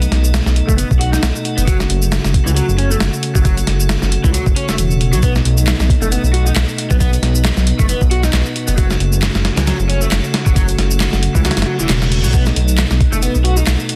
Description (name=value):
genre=breakbeat, breaks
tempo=135 BPM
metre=4/4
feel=swing 56% on 16ths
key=F# dorian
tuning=A4 = 440 Hz
part: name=tonewheel organ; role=sustained chords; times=0.0-14.0 s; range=B2 to F#4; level=-25 LUFS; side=equal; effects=slow rotary speaker, sidechain pumping
part: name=dark detuned saw bass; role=bass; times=0.0-13.8 s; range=E1 to C#2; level=-18 LUFS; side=equal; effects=none
part: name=dusty soul sampler-style drum kit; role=drums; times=0.0-14.0 s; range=hi-hat, kick drum, snare drum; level=-19 LUFS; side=equal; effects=none
part: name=electronic shaker and handclaps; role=drums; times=0.0-13.9 s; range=none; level=-28 LUFS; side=equal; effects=overdrive
part: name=raw garage guitar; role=riff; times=0.7-13.6 s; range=E3 to F#4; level=-26 LUFS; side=equal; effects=overdrive, tube saturation, phaser, low-pass filter, digital delay
part: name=reverse cymbal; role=sound effects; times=11.7-12.3 s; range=none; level=-30 LUFS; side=equal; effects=none
room=little or no reverb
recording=dense, heavily limited modern master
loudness=-15 LUFS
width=mono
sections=0.0-14.0 A section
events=reverse cymbal 11.7-12.3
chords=0.0 B7; 1.7 F#m; 5.2 B7; 8.8 F#m; 12.3 B7